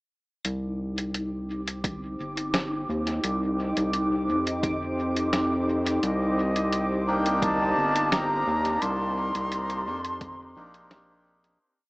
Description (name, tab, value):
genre	ambient dub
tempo	86 BPM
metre	4/4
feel	straight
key	C minor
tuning	A4 = 441 Hz
part	warm analog pad	sustained chords	0.4-11.6 s	C4 to C5	-34 LUFS	equal	chorus
part	lo-fi sampler-style drum kit	drums	0.4-11.6 s	hi-hat, snare drum	-30 LUFS	equal	dub echo
part	round analog bass	bass	0.5-11.6 s	G1 to F2	-30 LUFS	equal	none
part	bubbling stepped-filter texture	texture	0.5-11.6 s	Eb4 to D6	-30 LUFS	equal	chorus, built-in reverb
part	electronic kick drum	drums	1.8-10.4 s	none	-33 LUFS	equal	overdrive
part	breathy bright concert flute	melody	6.0-10.9 s	Eb5 to C6	-29 LUFS	equal	dub echo
part	melodica	stabs	7.1-11.6 s	Bb3 to G4	-29 LUFS	equal	dub echo
room	moderate spring reverb, RT60 1.9 s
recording	echo-heavy mix, small speaker sound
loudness	-24 LUFS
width	side -24 dB against mid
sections	0.4-11.6 groove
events	fade-in on analog synth pad 0.4-11.6; fade-out 7.9-11.6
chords	0.4 Cm9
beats	| 0.44 1.14 1.84 2.54 | 3.23 3.93 4.63 5.33 | 6.03 6.72 7.42 8.12 | 8.82 9.51 10.21 10.91